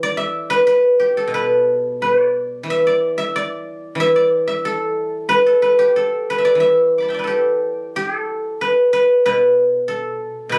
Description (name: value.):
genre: chinese traditional.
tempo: 85-96 BPM.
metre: 2/4.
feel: rubato.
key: E yu mode.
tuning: A4 = 439 Hz.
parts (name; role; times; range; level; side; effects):
guzheng; solo; 0.0-10.6 s; B2 to D6; -17 LUFS; equal; none.
room: little or no reverb.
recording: recorded on a phone in the room, studio ambience.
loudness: -17 LUFS.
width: mono.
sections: 0.0-8.0 A section; 8.0-10.6 A section.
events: none.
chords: none.